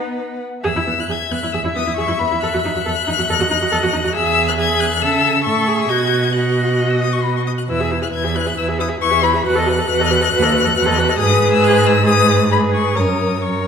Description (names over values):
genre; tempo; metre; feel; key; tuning
quick classical-period movement for string quartet; 136 BPM; 4/4; rubato; E major; A4 = 441 Hz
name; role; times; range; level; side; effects
rich violin; melody; 0.0-13.7 s; F#5 to G#6; -19 LUFS; left 8 dB; none
rich violin; second line; 0.0-13.7 s; B4 to E5; -22 LUFS; left 3 dB; none
rich viola; accompaniment; 0.0-13.7 s; B3 to A#4; -20 LUFS; right 2 dB; none
rich cello; bass; 0.0-13.7 s; E2 to D#4; -20 LUFS; right 3 dB; none
room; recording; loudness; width
wet recital hall reverb, RT60 1.5 s; recorded in a church or concert hall; -14 LUFS; side -7 dB against mid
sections
0.7-13.7 A section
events
none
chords
0.0 B; 0.7 N.C.; 2.4 Esus2; 4.2 E; 5.0 A/C#; 5.9 B; 7.7 E; 9.5 B7/E; 11.2 G#m; 13.0 F#